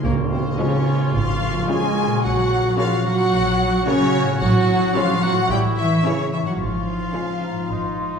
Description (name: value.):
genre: cinematic, playful, whimsical film cue.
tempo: 109 BPM.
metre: 4/4.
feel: straight.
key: Db major.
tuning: A4 = 440 Hz.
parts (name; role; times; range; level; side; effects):
warm studio violin section; melody; 0.0-8.2 s; Bb4 to Ab5; -26 LUFS; left 2 dB; none.
clear clarinet; second line; 0.0-8.2 s; Bb3 to Ab4; -25 LUFS; right 1 dB; none.
mellow hollow concert flute; second line; 0.0-8.2 s; Ab5 to Db6; -30 LUFS; equal; none.
concert harp; arpeggios; 0.0-8.2 s; Ab2 to E5; -26 LUFS; left 3 dB; none.
warm studio cello section; bass; 0.0-8.2 s; Bb2 to Ab3; -23 LUFS; right 2 dB; none.
warm studio double bass section; bass; 0.0-8.1 s; Ab1 to Db2; -25 LUFS; right 2 dB; none.
tam-tam; percussion; 0.0-2.2 s; none; -31 LUFS; equal; none.
warm cor anglais; second line; 0.1-8.2 s; Eb4 to Gb4; -31 LUFS; right 2 dB; none.
rich studio violin section; second line; 0.6-7.6 s; Ab3 to Db4; -32 LUFS; left 2 dB; none.
warm studio viola section; accompaniment; 0.6-7.6 s; Db3 to Gb3; -30 LUFS; equal; none.
mellow French horn section; sustained chords; 0.6-7.3 s; E3 to Db4; -30 LUFS; left 3 dB; none.
room: wet scoring stage reverb, RT60 1.6 s.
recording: heard from further back in the room.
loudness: -17 LUFS.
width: side -6 dB against mid.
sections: 0.0-8.2 A section.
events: band accent 0.0-0.6.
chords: 0.0 Db; 2.2 Gb/Bb; 4.4 Gbm/A; 5.5 A; 6.6 Db/Ab.